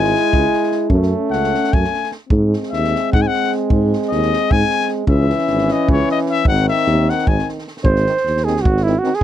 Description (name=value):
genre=balkan folk, Balkan brass band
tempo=303 BPM (eighths)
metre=7/8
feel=straight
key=G# phrygian dominant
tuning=A4 = 442 Hz
part: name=clear trumpet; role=second line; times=0.0-7.5 s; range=C#5 to G#5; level=-19 LUFS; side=left 9 dB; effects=none
part: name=clear trombone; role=accompaniment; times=0.0-9.1 s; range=D#3 to A3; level=-22 LUFS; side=right 8 dB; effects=none
part: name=dark French horn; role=accompaniment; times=0.0-9.1 s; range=B#3 to E4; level=-23 LUFS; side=left 5 dB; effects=none
part: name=mellow tuba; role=bass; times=0.0-9.2 s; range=G#1 to G#2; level=-18 LUFS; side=equal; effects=none
part: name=compact cocktail drum kit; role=percussion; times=0.0-9.2 s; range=kick drum, snare drum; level=-20 LUFS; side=equal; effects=none
part: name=breathy flugelhorn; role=melody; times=7.8-9.2 s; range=E4 to B#4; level=-17 LUFS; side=right 4 dB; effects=none
room=little or no reverb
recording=dry, close 1970s-style studio recording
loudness=-14 LUFS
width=side -11 dB against mid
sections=0.0-7.8 A section; 7.8-9.2 B section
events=trumpet solo 0.0-7.8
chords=0.0 C#m; 0.9 F#m; 2.3 G#; 5.1 C#m; 6.5 G#